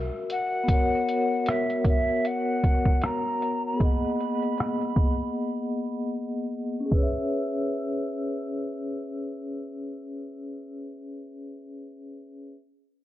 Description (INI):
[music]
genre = lo-fi hip hop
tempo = 77 BPM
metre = 4/4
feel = swing 58% on 16ths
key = C# dorian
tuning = A4 = 439 Hz
[part]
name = vibraphone with soft mallets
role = accompaniment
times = 0.0-12.6 s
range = A#3 to F#5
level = -28 LUFS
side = left 2 dB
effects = cassette tape
[part]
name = breathy mellow jazz flute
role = melody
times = 0.3-10.8 s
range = E5 to E6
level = -30 LUFS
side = equal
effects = none
[part]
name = trip hop sampler-style drum kit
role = drums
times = 0.3-7.1 s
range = hi-hat, kick drum, rim click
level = -25 LUFS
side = equal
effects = none
[sound]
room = small room ambience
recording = dry, gritty hardware recording, low-pass filter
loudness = -24 LUFS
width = side -14 dB against mid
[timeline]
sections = 0.0-6.9 A section; 6.9-10.0 B section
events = filter sweep 0.0-6.9; break 5.4-6.9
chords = 0.0 F#7; 0.7 B5; 3.8 G#m7; 6.9 C#m7